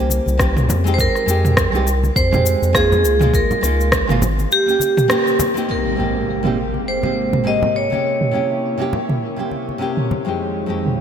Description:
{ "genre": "sunset chillout", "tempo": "102 BPM", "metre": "4/4", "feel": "swing 58% on 16ths", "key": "Ab major", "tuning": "A4 = 440 Hz", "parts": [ { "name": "vibraphone with hard mallets", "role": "melody", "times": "0.0-8.6 s", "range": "G4 to Eb5", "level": "-19 LUFS", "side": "right 2 dB", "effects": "ping-pong delay" }, { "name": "nylon-string guitar", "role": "accompaniment", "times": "0.0-11.0 s", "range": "F2 to G4", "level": "-23 LUFS", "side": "moving between left 6 dB and right 5 dB", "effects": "auto-pan, ping-pong delay" }, { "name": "round analog bass", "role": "bass", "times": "0.0-4.5 s", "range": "Ab1 to F2", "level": "-18 LUFS", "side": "equal", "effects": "none" }, { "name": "deep house drum kit", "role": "drums", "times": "0.1-11.0 s", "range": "cabasa, rim click, toms", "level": "-21 LUFS", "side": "equal", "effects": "low-pass filter on perc, low-pass filter on snare, low-pass filter on toms, gated reverb" }, { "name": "congas", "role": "percussion", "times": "0.1-10.2 s", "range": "none", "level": "-27 LUFS", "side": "equal", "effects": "none" }, { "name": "electronic kick drum", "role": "drums", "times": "0.4-4.1 s", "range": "none", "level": "-21 LUFS", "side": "equal", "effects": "none" }, { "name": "lush unison pad", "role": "sustained chords", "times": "5.7-11.0 s", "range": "C3 to Db5", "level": "-26 LUFS", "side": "equal", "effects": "chorus" }, { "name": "impact", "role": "sound effects", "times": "5.7-8.0 s", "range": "none", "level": "-26 LUFS", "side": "equal", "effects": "none" } ], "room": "moderate lush hall reverb, RT60 2.6 s", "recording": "bright 1980s-style digital production", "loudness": "-15 LUFS", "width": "side -8 dB against mid", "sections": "0.0-5.7 A section; 5.7-11.0 B section", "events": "band accent 5.1; impact 5.7-8.0", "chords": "0.0 C7(no3); 1.0 Fm7; 3.0 Db69; 4.5 Eb7 (rootless); 5.7 Abmaj9; 8.0 C7b9; 10.4 Fm7", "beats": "0.40 | 0.98 1.57 2.16 2.75 | 3.34 3.92 4.51 5.10 | 5.69 6.28 6.87 7.45 | 8.04 8.63 9.22 9.81 | 10.39 10.98" }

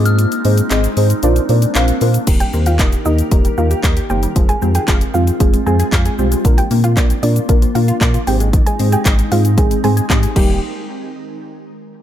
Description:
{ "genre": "dance-pop", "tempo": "115 BPM", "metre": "4/4", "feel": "straight", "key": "Eb major", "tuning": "A4 = 441 Hz", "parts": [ { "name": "deep mellow chord stab", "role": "accompaniment", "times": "0.0-10.6 s", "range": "G3 to F5", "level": "-20 LUFS", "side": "equal", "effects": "chorus, phaser, sidechain pumping" }, { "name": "glassy FM pad", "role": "sustained chords", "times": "0.0-10.6 s", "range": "Eb3 to Bb4", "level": "-23 LUFS", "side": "left 1 dB", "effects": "ensemble chorus, built-in reverb, sidechain pumping" }, { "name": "sub bass with octave", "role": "bass", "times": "0.0-10.6 s", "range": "Eb1 to Bb2", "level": "-16 LUFS", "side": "equal", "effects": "sidechain pumping" }, { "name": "soft synth bell", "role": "melody", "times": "0.1-0.8 s", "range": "F6", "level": "-27 LUFS", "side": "left 3 dB", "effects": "chorus, ping-pong delay" }, { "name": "pop drum kit", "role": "drums", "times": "0.1-10.5 s", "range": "crash cymbal, handclaps, hi-hat, kick drum, shaker", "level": "-16 LUFS", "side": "equal", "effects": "none" }, { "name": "tight sequenced synth", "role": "arpeggios", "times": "2.3-10.6 s", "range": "D3 to F5", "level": "-26 LUFS", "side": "left 2 dB", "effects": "chorus, sidechain pumping, ping-pong delay" }, { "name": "soft round pluck", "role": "melody", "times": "2.4-10.6 s", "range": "D4 to Ab5", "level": "-23 LUFS", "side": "right 1 dB", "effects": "chorus, sidechain pumping, ping-pong delay" } ], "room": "little or no reverb", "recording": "none", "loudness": "-12 LUFS", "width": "side -11 dB against mid", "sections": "0.0-2.3 A section; 2.3-10.6 B section; 10.6-12.0 C section", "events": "kick muted 0.2-2.3", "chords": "0.0 Ab; 1.2 Bbadd9; 2.3 Eb; 4.4 Fm; 6.4 Bb; 8.3 Ab; 10.4 Eb; 10.6 N.C.", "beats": "| 0.19 0.71 1.23 1.75 | 2.27 2.79 3.32 3.84 | 4.36 4.88 5.40 5.92 | 6.45 6.97 7.49 8.01 | 8.53 9.06 9.58 10.10" }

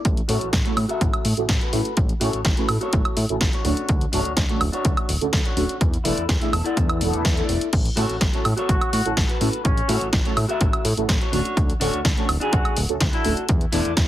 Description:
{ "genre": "filtered disco house", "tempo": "125 BPM", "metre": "4/4", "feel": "straight", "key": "A major", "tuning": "A4 = 440 Hz", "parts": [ { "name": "punchy analog drum machine", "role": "drums", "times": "0.0-14.1 s", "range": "crash cymbal, hi-hat, snare drum, woodblock", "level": "-26 LUFS", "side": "equal", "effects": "none" }, { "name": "fat analog bass", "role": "bass", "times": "0.1-14.1 s", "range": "D1 to A2", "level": "-25 LUFS", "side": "equal", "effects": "sidechain pumping, low-pass filter" }, { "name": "electronic kick drum", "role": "drums", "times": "0.1-14.1 s", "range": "none", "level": "-22 LUFS", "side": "equal", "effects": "none" }, { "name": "mellow synth brass", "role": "accompaniment", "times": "0.3-13.8 s", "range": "A3 to A4", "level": "-28 LUFS", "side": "right 2 dB", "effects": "chorus, phaser, sidechain pumping, low-pass filter" }, { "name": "clean electric guitar", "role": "riff", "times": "0.3-13.9 s", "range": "D4 to A5", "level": "-28 LUFS", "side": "left 2 dB", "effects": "vintage 12-bit sampler grit, sidechain pumping, low-pass filter" }, { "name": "brilliant horn section", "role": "melody", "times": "8.7-13.3 s", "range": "C#4 to F#4", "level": "-29 LUFS", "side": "equal", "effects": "sidechain pumping, low-pass filter, tape echo" } ], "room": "light reverb", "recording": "heavily compressed radio sound", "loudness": "-19 LUFS", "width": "side -13 dB against mid", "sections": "0.0-14.1 A section", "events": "filter sweep 0.0-14.1; clean electric guitar fill 6.3-7.7", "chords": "0.1 A6; 3.6 Dmaj7; 5.8 E7sus4; 7.7 A6; 11.3 Dmaj7; 13.5 E7sus4", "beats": "| 0.05 0.53 1.01 1.49 | 1.97 2.45 2.93 3.41 | 3.89 4.37 4.85 5.33 | 5.81 6.29 6.77 7.25 | 7.73 8.21 8.69 9.17 | 9.65 10.13 10.61 11.09 | 11.57 12.05 12.53 13.01 | 13.49 13.97" }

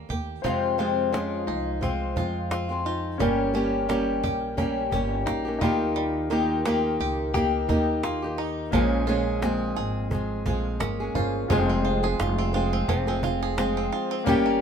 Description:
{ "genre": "acoustic pop", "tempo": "87 BPM", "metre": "4/4", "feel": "swing 55% on 16ths", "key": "F minor", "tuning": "A4 = 441 Hz", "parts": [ { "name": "fingerpicked old ladder-braced acoustic guitar", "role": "accompaniment", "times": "0.0-14.6 s", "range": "F2 to Ab4", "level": "-26 LUFS", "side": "left 1 dB", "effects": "none" }, { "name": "bluegrass banjo", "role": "arpeggios", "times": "0.0-14.6 s", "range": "F3 to Ab4", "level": "-33 LUFS", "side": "right 9 dB", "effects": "none" }, { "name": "upright bass", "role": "bass", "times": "0.0-14.6 s", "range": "F1 to F2", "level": "-30 LUFS", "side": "equal", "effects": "none" }, { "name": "cajon", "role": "drums", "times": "0.1-14.4 s", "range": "none", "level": "-30 LUFS", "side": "right 1 dB", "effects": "none" }, { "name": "direct-recorded clean electric guitar", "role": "second line", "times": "0.4-14.6 s", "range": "Ab3 to G4", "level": "-33 LUFS", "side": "left 4 dB", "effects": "none" }, { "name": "clear baby grand piano", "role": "accompaniment", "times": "0.4-14.6 s", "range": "Bb3 to Ab5", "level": "-34 LUFS", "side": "left 5 dB", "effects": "none" } ], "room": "little or no reverb", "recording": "minimal, uncompressed stereo recording", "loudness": "-23 LUFS", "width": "side -7 dB against mid", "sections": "0.4-11.5 A section; 11.5-14.6 B section", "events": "none", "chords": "0.4 Fm; 3.2 Gdim; 5.6 Eb; 8.7 Bbm7; 11.5 Fm", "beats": "| 0.45 1.13 1.82 2.51 | 3.20 3.89 4.58 5.27 | 5.96 6.66 7.35 8.04 | 8.73 9.42 10.12 10.81 | 11.50 12.19 12.88 13.58 | 14.27" }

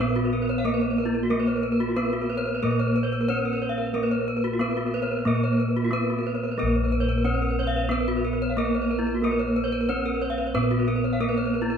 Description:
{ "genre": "Balinese gamelan", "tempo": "91 BPM", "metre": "4/4", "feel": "straight", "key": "Bb pelog", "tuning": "A4 = 441 Hz", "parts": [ { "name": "gamelan-type bronze metallophone", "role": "melody", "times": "0.0-11.8 s", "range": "Bb3 to C4+50c", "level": "-27 LUFS", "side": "equal", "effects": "none" }, { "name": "gamelan-type bronze metallophone", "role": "accompaniment", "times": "0.0-11.8 s", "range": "Bb3 to Cb4", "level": "-30 LUFS", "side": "right 1 dB", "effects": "none" }, { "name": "gamelan-type bronze metallophone", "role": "arpeggios", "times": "0.0-11.7 s", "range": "F4-45c to F5-45c", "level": "-29 LUFS", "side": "left 3 dB", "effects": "none" }, { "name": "gamelan-type bossed gongs", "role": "bass", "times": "0.0-11.8 s", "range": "Bb1 to Bb4", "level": "-29 LUFS", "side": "equal", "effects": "none" }, { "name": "gamelan-type bronze metallophone", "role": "arpeggios", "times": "0.1-11.8 s", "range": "F4-45c to F5-45c", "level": "-31 LUFS", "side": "right 4 dB", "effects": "none" } ], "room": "wet large studio reverb, RT60 1.2 s", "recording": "band playing live in one room", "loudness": "-22 LUFS", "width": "side -7 dB against mid", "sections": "0.0-11.8 A section", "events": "none", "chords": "none", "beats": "0.00 0.66 | 1.31 1.97 2.63 3.29 | 3.95 4.61 5.27 5.93 | 6.59 7.25 7.91 8.57 | 9.23 9.88 10.54 11.20" }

